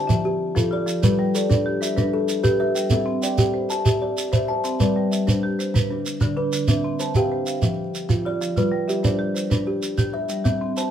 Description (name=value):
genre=southern african traditional, mbira-style interlocking cycle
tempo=127 BPM (dotted quarters)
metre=12/8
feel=straight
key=G mixolydian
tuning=A4 = 435 Hz
part: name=kalimba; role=arpeggios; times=0.0-10.9 s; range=D3 to A5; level=-23 LUFS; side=left 2 dB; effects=none
part: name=marimba with medium hard mallets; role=arpeggios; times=0.0-10.9 s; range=D3 to A5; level=-27 LUFS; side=right 2 dB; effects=none
part: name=shekere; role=percussion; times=0.1-10.9 s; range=none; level=-23 LUFS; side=right 2 dB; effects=none
room=wet small room reverb, RT60 0.6 s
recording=band playing live in one room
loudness=-19 LUFS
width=side -9 dB against mid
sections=0.0-4.8 A section; 4.8-10.9 A section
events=none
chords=0.1 F; 1.0 G; 2.9 C; 4.8 G; 5.7 Bm/D; 6.7 C; 7.6 Dmadd9/F; 8.6 G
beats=0.10 0.57 | 1.04 1.51 1.98 2.44 | 2.91 3.38 3.85 4.32 | 4.79 5.26 5.74 6.21 | 6.68 7.15 7.62 8.10 | 8.57 9.04 9.52 9.99 | 10.46